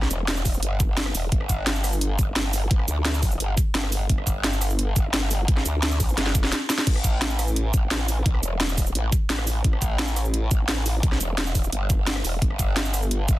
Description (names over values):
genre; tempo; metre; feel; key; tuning
dark technical drum and bass; 173 BPM; 4/4; straight; unclear; A4 = 440 Hz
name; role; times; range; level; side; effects
growl bass; bass; 0.0-13.4 s; E1 to D2; -25 LUFS; equal; chorus, tube saturation, sidechain pumping
drum and bass drum kit; drums; 0.0-13.4 s; cabasa, crash cymbal, hi-hat, rim click, snare drum; -26 LUFS; equal; overdrive
electronic kick drum; drums; 0.5-13.4 s; none; -22 LUFS; equal; overdrive
room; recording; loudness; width
little or no reverb; dense, heavily limited modern master; -21 LUFS; side -16 dB against mid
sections
0.0-13.4 A section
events
drum fill 6.2-6.9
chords
none